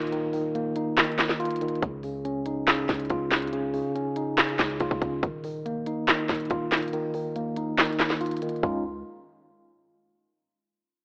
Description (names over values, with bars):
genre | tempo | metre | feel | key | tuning
hip hop, trap | 141 BPM | 4/4 | half-time | Db major | A4 = 440 Hz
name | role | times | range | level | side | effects
mellow tine electric piano | accompaniment | 0.0-8.8 s | Db3 to F4 | -31 LUFS | equal | low-pass filter
long sustained 808-style bass | bass | 0.0-9.0 s | Eb1 to Db2 | -45 LUFS | equal | none
trap drum kit | drums | 0.0-8.7 s | handclaps, hi-hat, kick drum, snare drum, toms | -27 LUFS | equal | none
room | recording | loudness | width
moderate plate reverb, RT60 2.1 s | worn, warbling old tape, cassette tape, warbly pitch drift, AM radio sound | -27 LUFS | mono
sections
0.0-1.8 A section; 1.8-8.6 B section; 8.6-10.3 C section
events
kick muted 1.0-1.8, 6.9-8.6; filter sweep on tine electric piano 1.8-8.6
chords
0.0 Ebsus2; 1.8 Dbadd9; 5.2 Ebsus2; 8.6 Dbadd9